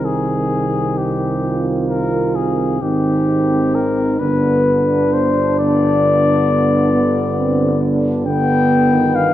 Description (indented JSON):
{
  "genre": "classical, hymn-like piece for brass band",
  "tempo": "44 BPM (dotted quarters)",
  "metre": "12/8",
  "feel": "rubato",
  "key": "C minor",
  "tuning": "A4 = 438 Hz",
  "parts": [
    { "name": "mellow cornet", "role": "melody", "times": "0.0-9.3 s", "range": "G4 to G5", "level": "-19 LUFS", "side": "left 5 dB", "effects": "none" },
    { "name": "warm euphonium", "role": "accompaniment", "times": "0.0-9.3 s", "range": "B3 to C4", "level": "-21 LUFS", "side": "equal", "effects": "none" },
    { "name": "warm trombone", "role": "accompaniment", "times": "0.0-9.3 s", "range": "D3 to Eb3", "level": "-23 LUFS", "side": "right 2 dB", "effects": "none" },
    { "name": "mellow tuba", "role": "bass", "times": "0.0-9.3 s", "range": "G1 to C2", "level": "-22 LUFS", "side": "equal", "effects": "none" },
    { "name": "dark French horn section", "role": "second line", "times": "1.4-9.3 s", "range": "B3 to F4", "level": "-19 LUFS", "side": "right 3 dB", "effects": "none" }
  ],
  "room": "moderate concert hall reverb, RT60 2.4 s",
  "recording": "worn, warbling old tape, cassette tape, warbly pitch drift, nothing above 10.4 kHz",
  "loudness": "-14 LUFS",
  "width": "side -13 dB against mid",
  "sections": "0.0-9.3 A section",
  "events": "none",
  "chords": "0.0 Cm; 4.2 G"
}